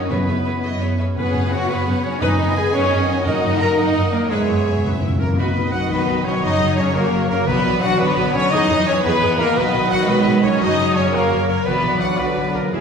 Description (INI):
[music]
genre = cinematic, heroic adventure film score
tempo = 114 BPM (dotted quarters)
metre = 6/8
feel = straight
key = unclear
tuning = A4 = 441 Hz
[part]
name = clear oboe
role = second line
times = 0.0-12.8 s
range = G#4 to A#5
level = -27 LUFS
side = right 1 dB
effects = none
[part]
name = warm symphonic violin section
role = second line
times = 0.0-12.8 s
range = F#4 to F#5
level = -28 LUFS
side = left 1 dB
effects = none
[part]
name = warm French horn section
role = sustained chords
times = 0.0-12.8 s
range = G#3 to A#4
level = -22 LUFS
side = left 3 dB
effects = none
[part]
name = warm trombone section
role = sustained chords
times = 0.0-12.8 s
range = B2 to C#4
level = -28 LUFS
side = right 2 dB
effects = none
[part]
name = concert harp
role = arpeggios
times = 0.0-12.8 s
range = F#2 to D6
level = -27 LUFS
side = left 6 dB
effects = none
[part]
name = dark symphonic cello section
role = bass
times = 0.0-12.8 s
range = D3 to A#4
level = -24 LUFS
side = right 4 dB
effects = none
[part]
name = warm symphonic double bass section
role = bass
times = 0.0-12.8 s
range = F#1 to F#2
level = -25 LUFS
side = right 2 dB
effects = none
[part]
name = rich studio violin section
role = melody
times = 0.1-12.8 s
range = G#4 to G#5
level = -30 LUFS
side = left 2 dB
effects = none
[part]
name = warm symphonic viola section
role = accompaniment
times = 0.1-12.8 s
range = C#4 to D#5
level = -27 LUFS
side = right 2 dB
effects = none
[part]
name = clear trumpet section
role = stabs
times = 0.1-12.8 s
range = G#4 to A#5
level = -26 LUFS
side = right 2 dB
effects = none
[part]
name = timpani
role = percussion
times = 0.1-5.4 s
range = F#2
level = -25 LUFS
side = left 1 dB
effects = none
[sound]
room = wet recital hall reverb, RT60 1.4 s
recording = heard from further back in the room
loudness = -16 LUFS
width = side -6 dB against mid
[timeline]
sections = 0.0-5.4 A section; 5.4-12.8 B section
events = timpani fill 4.3-5.4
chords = 0.1 C#m7/F#; 1.2 F#sus4; 2.2 G#m/F#; 3.3 D#m/F#; 4.3 C#m7/F#; 5.4 B; 6.4 F#; 7.5 Bm; 8.5 E; 9.6 B; 10.6 F#; 11.7 Bm